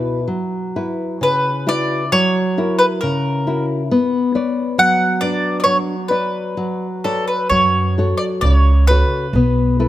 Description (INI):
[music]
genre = fado-style ballad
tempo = 66 BPM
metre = 2/4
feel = uneven beats, rubato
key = B minor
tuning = A4 = 441 Hz
[part]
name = nylon-string guitar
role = accompaniment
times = 0.0-9.9 s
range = B2 to D5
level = -19 LUFS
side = left 1 dB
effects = none
[part]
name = upright bass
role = bass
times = 0.0-9.9 s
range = B1 to F#2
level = -14 LUFS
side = right 1 dB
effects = none
[part]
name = mandolin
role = melody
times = 1.2-9.9 s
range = A4 to F#5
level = -18 LUFS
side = equal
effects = none
[sound]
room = light reverb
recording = close, detailed microphones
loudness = -15 LUFS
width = side -14 dB against mid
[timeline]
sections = 0.0-7.5 A section; 7.5-9.9 B section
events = none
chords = 0.3 F#7sus4; 2.1 F#7; 3.9 Bmadd9; 7.5 F#m; 9.3 B7sus4